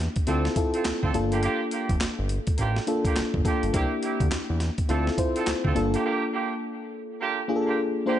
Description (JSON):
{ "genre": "R&B, new jack swing", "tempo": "104 BPM", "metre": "4/4", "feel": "swing 62% on 16ths", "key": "unclear", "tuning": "A4 = 435 Hz", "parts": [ { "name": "mellow FM electric piano", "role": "accompaniment", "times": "0.0-8.2 s", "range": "Bb3 to C5", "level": "-27 LUFS", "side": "left 2 dB", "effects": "chorus" }, { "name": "fat analog bass", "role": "bass", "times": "0.0-6.0 s", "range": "F1 to E2", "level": "-27 LUFS", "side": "equal", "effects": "none" }, { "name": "boom bap sampler-style drum kit", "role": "drums", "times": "0.2-6.0 s", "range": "handclaps, hi-hat, kick drum, snare drum", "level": "-27 LUFS", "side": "equal", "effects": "none" }, { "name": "mellow horn section", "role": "stabs", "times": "0.3-8.2 s", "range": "Bb3 to A4", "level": "-31 LUFS", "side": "right 6 dB", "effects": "ping-pong delay" } ], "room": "light reverb", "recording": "nothing above 10.3 kHz", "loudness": "-23 LUFS", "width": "side -11 dB against mid", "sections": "0.0-8.2 A section", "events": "none", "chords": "0.3 Dm7; 1.1 Gm7; 3.7 C7; 4.9 Dm7; 5.8 Gm7", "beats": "0.27 0.85 | 1.43 2.00 2.58 3.16 | 3.74 4.31 4.89 5.47 | 6.04 6.62 7.20 7.77" }